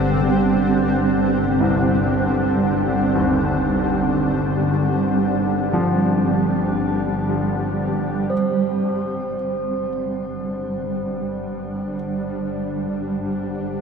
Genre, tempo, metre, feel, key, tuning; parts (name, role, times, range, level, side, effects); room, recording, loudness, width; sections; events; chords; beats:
dark ambient drone; free time; A4 = 440 Hz
granular cloud pad; sustained chords; 0.0-13.8 s; G3 to C5; -21 LUFS; right 1 dB; built-in reverb, shimmer reverb
clear grand piano; arpeggios; 0.0-11.9 s; C2 to C4; -27 LUFS; equal; ping-pong delay, shimmer reverb
organ-like drone; drone; 0.0-13.8 s; G1 to D3; -23 LUFS; left 1 dB; ensemble chorus, built-in reverb
quartz singing bowl; texture; 8.3-13.8 s; C5; -28 LUFS; right 3 dB; shimmer reverb
wet cathedral reverb, RT60 5.7 s; nothing above 10.7 kHz; -18 LUFS; side -6 dB against mid
0.0-8.3 A section; 8.3-13.8 B section
0.0 Cm/G
free time